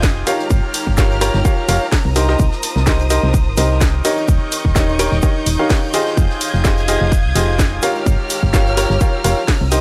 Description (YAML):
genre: piano house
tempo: 127 BPM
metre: 4/4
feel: swing 55% on 16ths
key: unclear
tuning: A4 = 440 Hz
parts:
  - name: rich chamber string section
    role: sustained chords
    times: 0.0-9.8 s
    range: G4 to Ab6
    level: -28 LUFS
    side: equal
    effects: sidechain pumping
  - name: clear grand piano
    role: riff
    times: 0.0-9.8 s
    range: Eb4 to Bb5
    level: -22 LUFS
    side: equal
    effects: sidechain pumping, analog delay
  - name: solid FM bass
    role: bass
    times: 0.0-9.8 s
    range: Eb1 to C2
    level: -20 LUFS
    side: equal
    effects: sidechain pumping
  - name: electronic kick drum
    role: drums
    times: 0.0-9.6 s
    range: none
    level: -18 LUFS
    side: equal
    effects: none
  - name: house drum kit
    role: drums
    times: 0.0-9.8 s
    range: hi-hat, ride cymbal, snare drum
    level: -26 LUFS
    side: equal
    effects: none
  - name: soft brush drum kit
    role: drums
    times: 0.0-9.8 s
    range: hi-hat, shaker, snare drum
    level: -32 LUFS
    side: equal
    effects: sidechain pumping on hats, high-pass filter on hats, high-pass filter on snare, sidechain pumping on perc, high-pass filter on perc, high-pass filter on room
  - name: granular cloud pad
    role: texture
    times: 0.0-9.8 s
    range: Eb4 to Bb5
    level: -32 LUFS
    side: equal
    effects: none
room: studio ambience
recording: dry, gritty hardware recording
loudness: -16 LUFS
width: mono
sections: 0.0-9.8 A section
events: none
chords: 0.3 Gm7b5; 2.2 Cm7; 4.0 Eb7; 6.2 Fm9; 7.8 Gm7b5